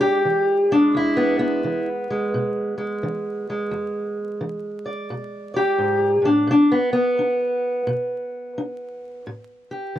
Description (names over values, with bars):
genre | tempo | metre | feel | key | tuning
acoustic country blues, solo or duo | 86 BPM | 4/4 | swing 64% on 8ths | E mixolydian | A4 = 438 Hz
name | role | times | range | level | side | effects
fingerpicked steel-string acoustic guitar | solo | 0.0-10.0 s | E2 to D5 | -20 LUFS | equal | none
room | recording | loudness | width
moderate booth ambience, RT60 0.2 s | dry, close 1970s-style studio recording, vinyl crackle | -19 LUFS | side -12 dB against mid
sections
0.0-10.0 A section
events
none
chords
0.0 E7; 6.5 B; 9.3 A5